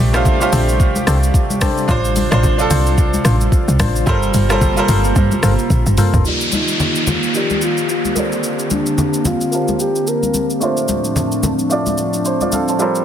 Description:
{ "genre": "amapiano", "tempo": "110 BPM", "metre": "4/4", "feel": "swing 58% on 16ths", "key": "unclear", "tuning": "A4 = 444 Hz", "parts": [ { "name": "bright grand piano", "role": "accompaniment", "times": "0.0-13.0 s", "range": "Bb2 to A5", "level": "-20 LUFS", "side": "right 3 dB", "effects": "low-pass filter" }, { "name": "airy breathy pad", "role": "sustained chords", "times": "0.0-13.0 s", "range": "A2 to A5", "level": "-21 LUFS", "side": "equal", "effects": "chorus, sidechain pumping, low-pass filter" }, { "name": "woody log drum bass", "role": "bass", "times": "0.0-6.2 s", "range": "G1 to G2", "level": "-16 LUFS", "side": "equal", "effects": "none" }, { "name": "percussive organ stab", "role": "stabs", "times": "0.1-6.2 s", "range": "D4 to C5", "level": "-24 LUFS", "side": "left 6 dB", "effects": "chorus, tape echo" }, { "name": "smooth R&B drum kit", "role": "drums", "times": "0.1-13.0 s", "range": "hi-hat, kick drum, rim click, shaker, toms", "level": "-19 LUFS", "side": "equal", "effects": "soft clipping on snare" }, { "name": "congas", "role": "percussion", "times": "0.3-12.7 s", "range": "none", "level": "-23 LUFS", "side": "left 2 dB", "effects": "none" }, { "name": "downlifter", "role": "sound effects", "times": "6.3-10.6 s", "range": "none", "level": "-23 LUFS", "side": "equal", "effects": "none" }, { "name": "breathy alto saxophone", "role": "melody", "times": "6.5-10.5 s", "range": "D4 to Bb4", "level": "-22 LUFS", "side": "left 2 dB", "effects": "low-pass filter, tape echo" } ], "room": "light reverb", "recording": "dense, heavily limited modern master", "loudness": "-13 LUFS", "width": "side -9 dB against mid", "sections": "0.0-6.3 A section; 6.3-13.0 B section", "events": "drop 0.0-6.3; drum fill 5.7-6.3; filter sweep 6.3-13.0", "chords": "0.0 Bbmaj13; 1.9 Dm7/A; 4.1 Gm11; 6.3 F13sus4; 8.2 Bbmaj13; 10.6 Dm7/A" }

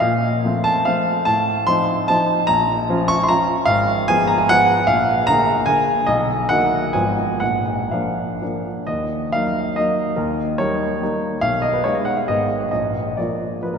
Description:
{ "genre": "classical, romantic triple-time dance for piano with dotted rhythms", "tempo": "113-160 BPM", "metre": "3/4", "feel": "rubato", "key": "Bb minor, Eb minor from 3.7 s", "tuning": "A4 = 435 Hz", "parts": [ { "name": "warm baby grand piano", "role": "solo", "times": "0.0-13.8 s", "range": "Ab1 to Db6", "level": "-16 LUFS", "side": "equal", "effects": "none" } ], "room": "wet cathedral reverb, RT60 4.4 s", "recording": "minimal, uncompressed stereo recording", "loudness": "-16 LUFS", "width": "side -6 dB against mid", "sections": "0.0-8.9 A section; 8.9-13.8 B section", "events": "none", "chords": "0.0 F/Bb; 1.3 F7/A; 2.5 Bbm; 3.7 Fdim/Ab; 4.9 Bb7; 6.1 Bmaj7; 6.9 Fdim/Ab; 7.4 Bb; 8.9 Ebm; 10.2 Eb7; 11.4 Abm/Cb; 12.3 Abm; 12.7 Bb" }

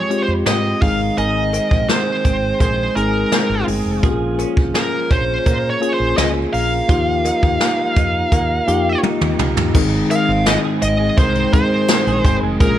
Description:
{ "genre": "1980s-style pop", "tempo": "84 BPM", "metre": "4/4", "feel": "straight", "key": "Ab major", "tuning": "A4 = 440 Hz", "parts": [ { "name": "high-gain lead guitar", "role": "melody", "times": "0.0-12.8 s", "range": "Bb4 to F5", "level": "-20 LUFS", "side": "right 1 dB", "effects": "distortion, plate reverb, analog delay" }, { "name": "mellow tine electric piano", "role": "accompaniment", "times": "0.0-12.8 s", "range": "Eb3 to Ab4", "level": "-20 LUFS", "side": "left 3 dB", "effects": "slow stereo tremolo" }, { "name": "twelve-string electric guitar", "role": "riff", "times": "0.0-12.8 s", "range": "Eb3 to Ab4", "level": "-26 LUFS", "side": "right 8 dB", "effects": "ensemble chorus, analog delay" }, { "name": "jazz brush drum kit", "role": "drums", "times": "0.1-12.8 s", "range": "crash cymbal, hi-hat, kick drum, snare drum, tambourine, toms", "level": "-18 LUFS", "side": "equal", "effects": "gated reverb" }, { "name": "woody fretless electric bass", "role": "bass", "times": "0.3-12.8 s", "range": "F1 to Bb2", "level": "-22 LUFS", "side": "equal", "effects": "none" }, { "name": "cowbell", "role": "percussion", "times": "0.5-12.8 s", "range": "none", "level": "-33 LUFS", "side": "left 3 dB", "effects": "none" }, { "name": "crunchy overdriven guitar", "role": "accompaniment", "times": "9.7-12.8 s", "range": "Ab2 to Bb3", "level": "-28 LUFS", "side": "left 3 dB", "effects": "none" } ], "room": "moderate studio reverb, RT60 0.6 s", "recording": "none", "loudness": "-14 LUFS", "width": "side -11 dB against mid", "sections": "0.0-9.7 A section; 9.7-12.8 B section", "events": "drum fill 9.0-9.7", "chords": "0.0 Fmadd9; 0.8 Ab; 4.0 Bbm7; 6.9 Ebadd9; 9.7 Ab" }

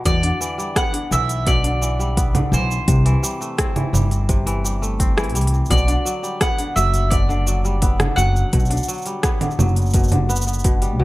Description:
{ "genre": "folktronica", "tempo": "85 BPM", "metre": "4/4", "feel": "straight", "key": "unclear", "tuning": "A4 = 439 Hz", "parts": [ { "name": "kora", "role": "arpeggios", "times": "0.0-11.0 s", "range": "B2 to C4", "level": "-25 LUFS", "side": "left 1 dB", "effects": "tape echo" }, { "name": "mandolin", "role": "melody", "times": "0.1-10.9 s", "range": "C5 to F#5", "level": "-24 LUFS", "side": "right 1 dB", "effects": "tape echo" }, { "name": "upright bass", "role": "bass", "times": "0.1-11.0 s", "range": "F#1 to E2", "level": "-19 LUFS", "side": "equal", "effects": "none" }, { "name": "electronic kick drum", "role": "drums", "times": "0.1-10.8 s", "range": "none", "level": "-20 LUFS", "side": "equal", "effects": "overdrive" }, { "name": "organic electronic drum kit", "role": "drums", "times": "0.1-11.0 s", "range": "congas, hi-hat, rim click, shaker", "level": "-23 LUFS", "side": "right 1 dB", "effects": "none" } ], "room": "small room ambience", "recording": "none", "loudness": "-16 LUFS", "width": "side -18 dB against mid", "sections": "0.1-11.0 A section", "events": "none", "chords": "0.1 Em7; 2.9 C6; 5.7 Gmaj7" }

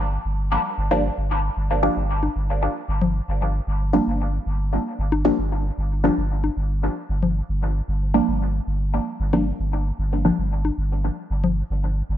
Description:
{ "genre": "dub techno", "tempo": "114 BPM", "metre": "4/4", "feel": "straight", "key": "G minor", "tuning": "A4 = 440 Hz", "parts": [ { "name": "filtered dub chord stab", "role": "stabs", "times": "0.0-10.4 s", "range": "F3 to D4", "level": "-24 LUFS", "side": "equal", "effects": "phaser, dub echo" }, { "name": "warm sub bass", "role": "bass", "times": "0.0-12.2 s", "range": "G1", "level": "-23 LUFS", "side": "equal", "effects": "none" }, { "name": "congas", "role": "percussion", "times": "0.9-11.5 s", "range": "none", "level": "-27 LUFS", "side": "left 6 dB", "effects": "dub echo" } ], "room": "light reverb", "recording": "nothing above 7.8 kHz", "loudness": "-20 LUFS", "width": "side -11 dB against mid", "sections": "0.0-12.2 A section", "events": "filter sweep on synth stab 0.0-12.2", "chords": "0.0 Gm7" }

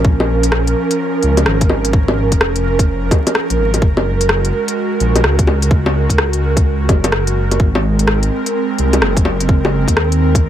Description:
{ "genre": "future garage", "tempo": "127 BPM", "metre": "4/4", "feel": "swing 64% on 16ths", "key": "Bb minor", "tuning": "A4 = 440 Hz", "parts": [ { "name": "airy breathy pad", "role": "sustained chords", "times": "0.0-10.5 s", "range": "F3 to Bb4", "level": "-18 LUFS", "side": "right 2 dB", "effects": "chorus, sidechain pumping" }, { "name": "dark detuned saw bass", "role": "bass", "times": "0.0-10.5 s", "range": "F1 to Eb2", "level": "-16 LUFS", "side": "equal", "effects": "tube saturation, sidechain pumping" }, { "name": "electronic kick drum", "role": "drums", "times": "0.0-10.4 s", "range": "none", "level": "-13 LUFS", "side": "equal", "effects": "none" }, { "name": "organic electronic drum kit", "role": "drums", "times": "0.2-10.4 s", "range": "bongos, hi-hat, rim click", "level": "-17 LUFS", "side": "left 1 dB", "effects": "none" } ], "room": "little or no reverb", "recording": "vinyl crackle", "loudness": "-12 LUFS", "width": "side -11 dB against mid", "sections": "0.0-10.5 A section", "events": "none", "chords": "0.0 Bbm; 3.8 Gbadd9; 7.6 Abadd9" }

